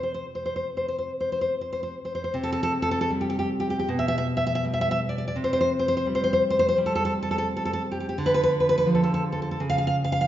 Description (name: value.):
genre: romantic piece for solo classical guitar.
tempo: 70-89 BPM.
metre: 4/4.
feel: rubato.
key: C major.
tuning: A4 = 442 Hz.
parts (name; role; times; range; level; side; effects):
nylon-string guitar; solo; 0.0-10.3 s; B2 to F5; -23 LUFS; equal; none.
room: wet recital hall reverb, RT60 1.7 s.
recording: recorded in a church or concert hall, nothing above 7.5 kHz.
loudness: -23 LUFS.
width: side -12 dB against mid.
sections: 0.0-2.4 A section; 2.4-10.3 B section.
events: none.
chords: 0.0 N.C.; 2.4 C5; 3.9 G/B; 5.3 C5; 8.2 Dm; 9.6 N.C..